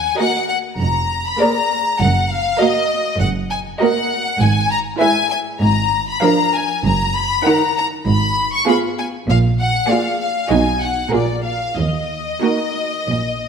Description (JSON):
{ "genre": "quick classical-period movement for string orchestra", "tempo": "98 BPM", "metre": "4/4", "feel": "rubato", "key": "Eb minor", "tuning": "A4 = 440 Hz", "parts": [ { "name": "rich studio violin section", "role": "melody", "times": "0.0-13.5 s", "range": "D5 to Db6", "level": "-19 LUFS", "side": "left 4 dB", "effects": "none" }, { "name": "clear studio cello section", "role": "bass", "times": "0.0-13.5 s", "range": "Eb2 to B2", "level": "-21 LUFS", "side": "right 2 dB", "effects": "none" }, { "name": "rich studio double bass section", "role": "bass", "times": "0.0-13.5 s", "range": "F1 to Eb2", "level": "-23 LUFS", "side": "right 3 dB", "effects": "none" }, { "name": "rich symphonic violin section", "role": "second line", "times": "0.2-12.9 s", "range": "F#4 to Gb5", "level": "-22 LUFS", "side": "equal", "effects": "none" }, { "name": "rich studio viola section", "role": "accompaniment", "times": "0.2-12.9 s", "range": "Eb3 to Ab4", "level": "-20 LUFS", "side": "right 4 dB", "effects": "none" } ], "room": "moderate scoring stage reverb, RT60 1.6 s", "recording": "none", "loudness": "-15 LUFS", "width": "side -6 dB against mid", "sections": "0.0-13.5 A section", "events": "none", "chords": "0.0 Ebm; 0.8 Bb7/F; 2.0 Ebm/Gb; 4.4 E/G#; 5.6 Bb7/Ab; 6.8 Ebm/Gb; 8.1 Fdim/Ab; 9.3 Bb7; 10.5 B; 11.1 Bb7; 11.8 Ebm", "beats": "0.19 0.80 1.41 | 2.00 2.60 3.20 3.80 | 4.40 5.01 5.62 6.23 | 6.84 7.45 8.06 8.67 | 9.28 9.89 10.51 11.13 | 11.77 12.43 13.08" }